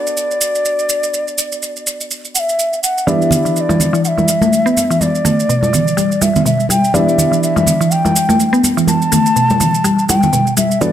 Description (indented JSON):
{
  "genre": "afro house",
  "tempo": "124 BPM",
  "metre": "4/4",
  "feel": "swing 57% on 16ths",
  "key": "E minor",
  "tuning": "A4 = 442 Hz",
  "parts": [
    { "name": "mellow hollow bansuri", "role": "melody", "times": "0.0-10.9 s", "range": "D5 to A5", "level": "-17 LUFS", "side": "left 1 dB", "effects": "digital delay" },
    { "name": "felt-muted upright piano", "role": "stabs", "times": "0.0-10.9 s", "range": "B3 to D5", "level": "-22 LUFS", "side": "equal", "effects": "low-pass filter, digital delay" },
    { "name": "shaker", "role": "drums", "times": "0.1-10.9 s", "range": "none", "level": "-20 LUFS", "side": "right 3 dB", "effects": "overdrive" },
    { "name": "mallet-like synth pluck", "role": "arpeggios", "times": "3.1-10.9 s", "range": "B2 to B3", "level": "-15 LUFS", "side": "equal", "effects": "chorus, digital delay" },
    { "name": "congas", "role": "percussion", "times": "3.1-10.9 s", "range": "none", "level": "-18 LUFS", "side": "right 1 dB", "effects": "none" }
  ],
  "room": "light reverb",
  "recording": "none",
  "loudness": "-12 LUFS",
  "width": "side -10 dB against mid",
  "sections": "0.0-10.9 A section",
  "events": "filter sweep on felt piano 0.0-10.9",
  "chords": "0.0 Bm7; 3.1 Em7"
}